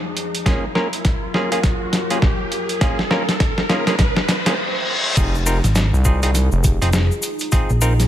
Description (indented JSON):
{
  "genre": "glitch hop",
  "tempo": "102 BPM",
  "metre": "4/4",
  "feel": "swing 60% on 16ths",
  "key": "F phrygian",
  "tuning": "A4 = 437 Hz",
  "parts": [
    { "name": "dark analog pad", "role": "sustained chords", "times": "0.0-8.1 s", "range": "F3 to Bb4", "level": "-29 LUFS", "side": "left 1 dB", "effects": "chorus, sidechain pumping" },
    { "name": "riser and reverse cymbal", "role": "sound effects", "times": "0.0-5.2 s", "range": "none", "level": "-25 LUFS", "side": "equal", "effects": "none" },
    { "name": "boom bap sampler-style drum kit", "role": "drums", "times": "0.2-8.1 s", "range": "crash cymbal, hi-hat, snare drum", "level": "-22 LUFS", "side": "equal", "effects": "none" },
    { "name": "clav", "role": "stabs", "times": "0.5-7.9 s", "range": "Bb3 to Bb4", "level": "-24 LUFS", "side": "equal", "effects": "sidechain pumping, dub echo" },
    { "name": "electronic kick drum", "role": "drums", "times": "0.5-7.7 s", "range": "none", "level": "-18 LUFS", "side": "equal", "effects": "none" },
    { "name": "gritty driven synth bass", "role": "bass", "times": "5.2-6.8 s", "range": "F1 to C2", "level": "-17 LUFS", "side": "equal", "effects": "none" },
    { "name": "cabasa", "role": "percussion", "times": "5.2-8.1 s", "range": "none", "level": "-28 LUFS", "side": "left 4 dB", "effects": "none" },
    { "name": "hollow-body short-scale fingered electric bass", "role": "bass", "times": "5.6-8.1 s", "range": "F1 to Bb1", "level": "-16 LUFS", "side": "equal", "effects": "none" }
  ],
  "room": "light reverb",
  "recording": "none",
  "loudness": "-16 LUFS",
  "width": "side -11 dB against mid",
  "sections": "0.0-5.2 A section; 5.2-8.1 B section",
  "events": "build-up 0.0-5.2; drum fill 0.0-4.6; riser 0.0-4.6; reverse cymbal 4.0-5.2; stop 4.6-5.2; drop 5.2-8.1",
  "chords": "0.5 Gbmaj7; 5.2 Fm7"
}